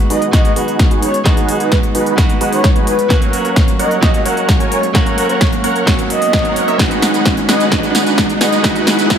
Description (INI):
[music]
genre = EDM, festival progressive house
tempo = 130 BPM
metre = 4/4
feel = straight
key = B major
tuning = A4 = 438 Hz
[part]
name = direct-recorded clean electric guitar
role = accompaniment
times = 0.0-9.2 s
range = F#3 to F#4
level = -20 LUFS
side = right 2 dB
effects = sidechain pumping
[part]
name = riser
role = sound effects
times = 1.5-9.2 s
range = none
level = -23 LUFS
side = right 2 dB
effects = none
[part]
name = breathy flute-like synth lead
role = melody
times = 0.1-8.6 s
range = A#4 to D#5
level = -20 LUFS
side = equal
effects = analog chorus, dub echo
[part]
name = dense compressed supersaw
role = riff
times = 0.1-9.2 s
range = D#4 to G#5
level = -19 LUFS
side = right 1 dB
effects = sidechain pumping, low-pass filter, dub echo
[part]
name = big-room dance drum kit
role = drums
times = 0.1-9.2 s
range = hi-hat, snare drum, tambourine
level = -18 LUFS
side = equal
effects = none
[part]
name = electronic kick drum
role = drums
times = 0.3-9.2 s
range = none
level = -14 LUFS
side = equal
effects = none
[sound]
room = light reverb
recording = high-pass filter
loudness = -11 LUFS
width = side -8 dB against mid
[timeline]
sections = 0.0-9.2 A section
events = build-up 0.0-9.2; drum fill 0.0-9.2; filter sweep on supersaw synth 0.0-9.2; filter sweep 0.0-9.2; riser 1.5-9.2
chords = 0.0 B6; 3.1 F#; 6.8 G#m7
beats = 0.33 0.79 | 1.26 1.72 2.18 2.64 | 3.10 3.56 4.03 4.49 | 4.95 5.41 5.87 6.33 | 6.79 7.26 7.72 8.18 | 8.64 9.10